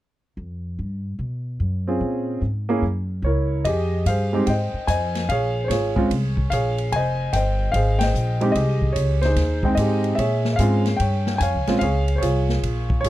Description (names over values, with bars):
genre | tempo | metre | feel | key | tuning
jazz piano trio | 147 BPM | 4/4 | swing 65% on 8ths | F minor | A4 = 439 Hz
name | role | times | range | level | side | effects
upright bass | bass | 0.4-13.1 s | F1 to B2 | -23 LUFS | equal | none
warm concert grand piano | melody | 1.9-13.1 s | Ab3 to Ab5 | -22 LUFS | equal | none
swinging big-band drum kit | drums | 3.6-13.1 s | hi-hat, kick drum, ride cymbal, snare drum | -29 LUFS | equal | none
room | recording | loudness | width
small room reverb | dry, close 1970s-style studio recording | -19 LUFS | side -14 dB against mid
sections
0.4-3.7 A section; 3.7-13.1 B section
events
band accent 7.9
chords
0.4 Fsus2; 1.2 B5; 2.0 Bbm7; 2.8 Gb7; 3.7 Fm9; 5.3 Bbm7; 6.9 Fm9; 10.2 Bbm7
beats
| 0.38 0.79 1.20 1.60 | 2.02 2.42 2.83 3.24 | 3.65 4.06 4.47 4.88 | 5.29 5.70 6.10 6.51 | 6.92 7.33 7.74 8.14 | 8.55 8.96 9.37 9.77 | 10.18 10.59 11.00 11.41 | 11.81 12.22 12.63 13.04